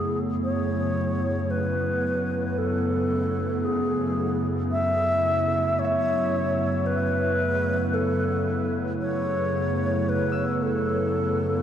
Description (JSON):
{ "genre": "ambient", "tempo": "56 BPM", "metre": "4/4", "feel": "straight", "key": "F# minor", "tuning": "A4 = 440 Hz", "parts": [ { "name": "bright reedy wooden-headed alto flute", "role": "melody", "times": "0.0-11.6 s", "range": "G#4 to E5", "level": "-26 LUFS", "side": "equal", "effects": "diffuse ambient delay" }, { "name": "warbly tape-like pad", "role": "sustained chords", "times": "0.0-11.6 s", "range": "C#3 to E4", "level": "-27 LUFS", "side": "equal", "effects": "chorus, built-in reverb" }, { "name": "dark chamber cello section", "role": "bass", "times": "0.0-11.6 s", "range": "F#2", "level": "-30 LUFS", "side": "equal", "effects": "none" }, { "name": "Celtic harp", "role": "arpeggios", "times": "5.8-11.6 s", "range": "E5 to E6", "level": "-33 LUFS", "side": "left 2 dB", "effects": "diffuse ambient delay" } ], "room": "wet huge ambient reverb, RT60 7.7 s", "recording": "worn, warbling old tape, cassette tape, warbly pitch drift", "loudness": "-22 LUFS", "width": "side -9 dB against mid", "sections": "0.0-11.6 A section", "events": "filter sweep on ambient pad 0.0-11.6", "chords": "0.0 F#m7" }